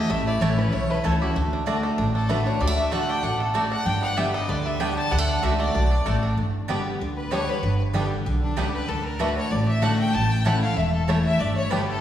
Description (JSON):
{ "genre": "bluegrass", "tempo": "191 BPM", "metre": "4/4", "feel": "swing 53% on 8ths", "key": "D major", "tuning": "A4 = 440 Hz", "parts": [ { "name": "bluegrass banjo", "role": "melody", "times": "0.0-11.8 s", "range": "D3 to G4", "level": "-30 LUFS", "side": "right 2 dB", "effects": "none" }, { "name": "bright fiddle", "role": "melody", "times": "0.0-12.0 s", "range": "D4 to A5", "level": "-30 LUFS", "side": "left 2 dB", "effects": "none" }, { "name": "picked steel-string acoustic guitar", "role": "accompaniment", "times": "0.0-12.0 s", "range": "E2 to G4", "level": "-26 LUFS", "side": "left 1 dB", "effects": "none" }, { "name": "upright bass", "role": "bass", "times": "0.1-11.9 s", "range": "E1 to D2", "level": "-26 LUFS", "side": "equal", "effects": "none" }, { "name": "mandolin", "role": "stabs", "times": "0.4-11.8 s", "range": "A3 to A5", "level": "-31 LUFS", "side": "right 2 dB", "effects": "none" }, { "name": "rich fiddle", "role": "second line", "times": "0.7-12.0 s", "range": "D4 to A5", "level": "-31 LUFS", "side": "left 2 dB", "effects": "none" } ], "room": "wet scoring stage reverb, RT60 1.6 s", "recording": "recorded in a church or concert hall, studio reverb", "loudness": "-21 LUFS", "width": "side -11 dB against mid", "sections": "0.0-6.4 A section; 6.4-12.0 B section", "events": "none", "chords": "0.0 A; 1.4 D; 3.9 G; 5.1 D; 6.4 G; 8.9 D; 10.1 A; 11.4 G" }